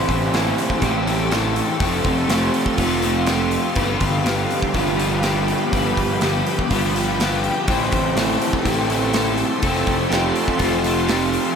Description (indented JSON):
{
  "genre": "rock, shoegaze and dream pop",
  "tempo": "122 BPM",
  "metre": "4/4",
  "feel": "straight",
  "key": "F lydian",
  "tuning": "A4 = 440 Hz",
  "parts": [
    { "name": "icy glass pad", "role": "sustained chords", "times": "0.0-11.5 s", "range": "G4 to C6", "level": "-26 LUFS", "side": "equal", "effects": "chorus, built-in reverb" },
    { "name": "electric guitar through a small old amp", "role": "arpeggios", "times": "0.0-11.6 s", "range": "F4 to C5", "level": "-26 LUFS", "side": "left 1 dB", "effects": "lush chorus, ping-pong delay" },
    { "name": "overdriven semi-hollow guitar", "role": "riff", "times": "0.0-11.6 s", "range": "G2 to F4", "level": "-23 LUFS", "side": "left 6 dB", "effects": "lush chorus" },
    { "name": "raw garage guitar", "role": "riff", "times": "0.0-11.6 s", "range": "G2 to F4", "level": "-25 LUFS", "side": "right 8 dB", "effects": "overdrive, reverse reverb" },
    { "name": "fuzz picked electric bass", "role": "bass", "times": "0.0-11.4 s", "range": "F1 to A1", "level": "-25 LUFS", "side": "equal", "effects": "overdrive" },
    { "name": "big rock drum kit", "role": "drums", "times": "0.1-11.4 s", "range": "hi-hat, kick drum, snare drum", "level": "-25 LUFS", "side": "right 1 dB", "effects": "none" }
  ],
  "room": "wet huge ambient reverb, RT60 8.5 s",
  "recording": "dreamy mix soaked in reverb",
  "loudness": "-17 LUFS",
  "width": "side -6 dB against mid",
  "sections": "0.0-11.6 A section",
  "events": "none",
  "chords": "0.0 Am7; 1.8 F; 3.8 G7; 7.7 Am7; 9.6 F"
}